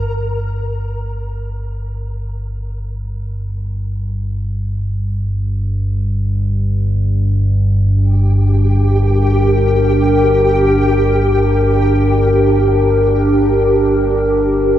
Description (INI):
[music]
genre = dark ambient drone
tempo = free time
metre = none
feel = none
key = G minor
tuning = A4 = 440 Hz
[part]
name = deep rumbling drone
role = drone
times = 0.0-14.8 s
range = G1 to G2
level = -16 LUFS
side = equal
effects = built-in reverb, wide subtle chorus
[part]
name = flickering grainy texture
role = texture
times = 0.0-0.1, 8.3-14.8 s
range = G4 to Bb4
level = -20 LUFS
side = right 1 dB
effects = built-in reverb
[part]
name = dark analog pad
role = sustained chords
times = 8.0-14.8 s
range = D4 to Bb4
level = -14 LUFS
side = left 1 dB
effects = chorus, phaser
[sound]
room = moderate huge ambient reverb, RT60 8.7 s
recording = dreamy mix soaked in reverb, nothing above 11.0 kHz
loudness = -13 LUFS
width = side -11 dB against mid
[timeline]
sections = 0.1-14.8 A section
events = none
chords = 0.1 Gm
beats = free time